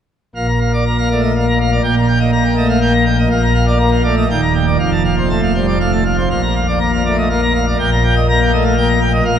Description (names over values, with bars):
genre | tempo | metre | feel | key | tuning
classical, organ toccata | 122 BPM | 3/4 | straight | Bb major | A4 = 444 Hz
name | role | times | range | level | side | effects
pipe organ, plenum | solo | 0.4-9.4 s | Eb1 to Bb5 | -12 LUFS | equal | none
room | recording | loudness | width
wet cathedral reverb, RT60 7.6 s | heard from further back in the room | -12 LUFS | side -8 dB against mid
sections
0.4-9.4 A section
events
none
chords
0.4 Bb; 1.8 Eb/Bb; 3.3 Bb; 4.3 Ebmaj7; 4.8 F; 6.3 Bb; 7.8 Eb/Bb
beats
| 0.36 0.85 1.35 | 1.83 2.32 2.81 | 3.30 3.79 4.29 | 4.79 5.29 5.80 | 6.30 6.80 7.30 | 7.79 8.28 8.77 | 9.25